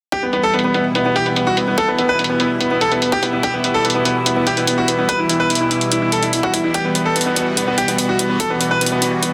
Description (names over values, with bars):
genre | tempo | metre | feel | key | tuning
heavy wobble dubstep | 145 BPM | 4/4 | half-time | E minor | A4 = 441 Hz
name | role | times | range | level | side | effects
bright grand piano | melody | 0.1-9.3 s | B3 to B4 | -19 LUFS | equal | none
supersaw pad | sustained chords | 0.1-9.3 s | B2 to F#4 | -23 LUFS | equal | phaser, sidechain pumping
electronic hi-hat | drums | 0.1-9.3 s | none | -23 LUFS | equal | low-pass filter on hats
electronic kick drum | drums | 0.1-8.5 s | none | -29 LUFS | equal | high-pass filter on kick
room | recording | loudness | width
moderate plate reverb, RT60 1.8 s, digital ambience | dense, heavily limited modern master | -17 LUFS | mono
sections
0.1-9.3 A section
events
none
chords
0.1 Em